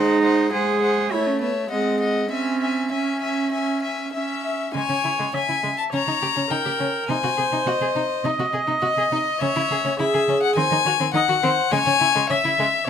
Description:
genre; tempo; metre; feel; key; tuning
quick classical-period movement for string quartet; 103 BPM; 4/4; rubato; C# minor; A4 = 439 Hz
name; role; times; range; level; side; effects
rich violin; melody; 0.0-12.9 s; D#5 to A#5; -24 LUFS; left 9 dB; none
warm violin; second line; 0.0-12.6 s; G#3 to E5; -27 LUFS; left 3 dB; none
rich viola; accompaniment; 0.0-12.9 s; G#3 to E5; -24 LUFS; right 2 dB; none
dark cello; bass; 0.0-12.9 s; B#2 to G#4; -26 LUFS; right 4 dB; none
room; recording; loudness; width
light reverb; close, detailed microphones; -19 LUFS; side -8 dB against mid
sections
0.0-4.7 A section; 4.7-12.9 B section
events
none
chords
0.0 G#7; 1.1 A; 1.7 G#7; 2.3 C#m; 5.9 D#7/C# (rootless); 7.1 G#/B#; 9.4 C#m; 10.6 G#7/D#; 11.7 C#m

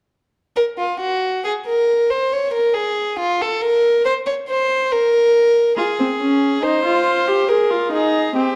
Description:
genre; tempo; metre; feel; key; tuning
classical, baroque-style fugue for string quartet; 69 BPM; 3/4; straight; unclear; A4 = 442 Hz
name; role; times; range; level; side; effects
rich violin; second line; 0.6-8.6 s; F4 to Db5; -19 LUFS; equal; none
rich viola; accompaniment; 5.8-8.6 s; C4 to Ab4; -20 LUFS; equal; none
room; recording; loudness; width
moderate recital hall reverb, RT60 1.4 s; dark, warm production; -18 LUFS; mono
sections
0.6-8.6 A section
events
none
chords
0.6 N.C.; 5.8 Fm; 7.5 Ab5

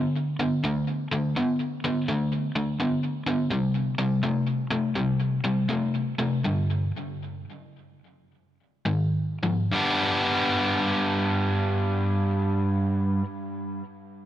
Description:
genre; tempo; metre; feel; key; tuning
blues; 67-84 BPM; 4/4; swing 66% on 8ths; G major; A4 = 440 Hz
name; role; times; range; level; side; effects
cranked stack guitar; solo; 0.0-13.3 s; G2 to D4; -24 LUFS; equal; overdrive, digital delay
room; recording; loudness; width
light reverb; none; -23 LUFS; side -12 dB against mid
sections
0.0-9.7 A section; 9.7-13.3 B section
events
slowing down 3.5-9.7; stop 6.4-8.9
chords
0.0 D5; 3.5 C5; 6.4 G5; 8.9 Ab5; 9.7 G

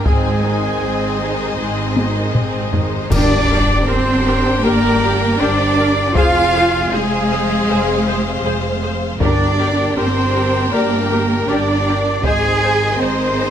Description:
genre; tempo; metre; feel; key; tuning
cinematic, epic orchestral film score; 79 BPM; 4/4; straight; G phrygian; A4 = 439 Hz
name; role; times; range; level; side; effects
rich symphonic violin section; melody; 0.0-13.5 s; Ab4 to Ab5; -29 LUFS; left 4 dB; none
rich chamber violin section; second line; 0.0-13.5 s; C4 to Ab5; -24 LUFS; left 1 dB; none
rich symphonic viola section; accompaniment; 0.0-13.5 s; Eb3 to C5; -26 LUFS; left 1 dB; none
rich symphonic string section; sustained chords; 0.0-13.5 s; C4 to G5; -23 LUFS; left 1 dB; none
warm trumpet; stabs; 0.0-13.5 s; Ab4 to Ab5; -22 LUFS; right 2 dB; none
mellow French horn section; sustained chords; 0.1-12.5 s; C4 to Eb5; -26 LUFS; left 4 dB; none
dark studio cello section; bass; 0.1-13.5 s; Ab2 to Ab4; -19 LUFS; equal; none
rich symphonic double bass section; bass; 0.1-13.5 s; F1 to Ab1; -22 LUFS; right 2 dB; none
taiko ensemble; drums; 0.1-13.0 s; none; -20 LUFS; left 1 dB; none
clash cymbals and concert bass drum; percussion; 3.1-4.6 s; none; -23 LUFS; equal; none
timpani; percussion; 3.1-4.2, 9.2-10.3 s; G2; -22 LUFS; equal; none
sub drop; sound effects; 3.4-6.2 s; none; -28 LUFS; equal; none
room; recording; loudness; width
light reverb; none; -14 LUFS; side -9 dB against mid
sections
0.0-3.1 A section; 3.1-13.5 B section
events
drum fill 2.0-3.1; band accent 3.1-3.9; impact 3.1-6.2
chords
0.1 Ab; 3.1 Gm; 6.2 Fm; 9.2 Gm; 12.2 Ab

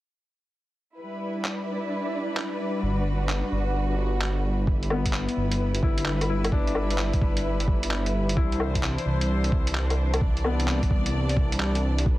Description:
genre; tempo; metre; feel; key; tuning
future garage; 130 BPM; 4/4; swing 66% on 16ths; unclear; A4 = 440 Hz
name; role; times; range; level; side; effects
rich studio string section; sustained chords; 1.0-12.2 s; E3 to D5; -31 LUFS; equal; vintage 12-bit sampler grit, sidechain pumping
flickering grainy texture; texture; 1.2-4.7 s; D4 to D5; -35 LUFS; left 1 dB; built-in reverb
lo-fi sampler-style drum kit; drums; 1.4-12.0 s; handclaps, hi-hat, woodblock; -30 LUFS; equal; overdrive, small room ambience
swelling detuned saw bass; bass; 2.8-12.2 s; G1 to C2; -26 LUFS; equal; sidechain pumping
electronic kick drum; drums; 4.7-12.2 s; none; -25 LUFS; equal; overdrive, small room ambience
bright upright piano; accompaniment; 4.9-12.1 s; B3 to E4; -33 LUFS; left 5 dB; sidechain pumping, low-pass filter, tape echo
room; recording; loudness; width
little or no reverb; dense, heavily limited modern master; -23 LUFS; side -16 dB against mid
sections
1.0-4.7 A section; 4.7-12.2 B section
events
none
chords
1.0 G6; 8.4 Cadd9

